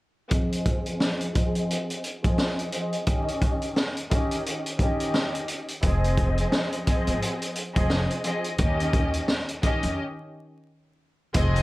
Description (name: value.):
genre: hip hop, boom-bap hip-hop.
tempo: 87 BPM.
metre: 4/4.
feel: swing 61% on 16ths.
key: F minor.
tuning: A4 = 442 Hz.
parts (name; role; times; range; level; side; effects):
warm studio string section; accompaniment; 0.3-11.6 s; Eb3 to Eb5; -28 LUFS; equal; cassette tape, high-pass filter, low-pass filter, plate reverb.
crunchy breakbeat drum kit; drums; 0.3-11.6 s; hi-hat, kick drum, snare drum; -26 LUFS; equal; none.
upright bass; bass; 5.8-11.6 s; F1 to F2; -26 LUFS; equal; none.
room: light reverb.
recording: vinyl crackle.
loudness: -23 LUFS.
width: side -18 dB against mid.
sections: 0.3-11.3 A section.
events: filter sweep on string section 0.3-11.3; break 10.0-11.3.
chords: 0.3 Fm7; 3.1 Eb7; 5.8 Fm7; 8.6 Eb7.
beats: | 0.31 1.00 1.69 2.38 | 3.07 3.76 4.45 5.14 | 5.83 6.52 7.21 7.90 | 8.59 9.28 9.97 10.65 | 11.35.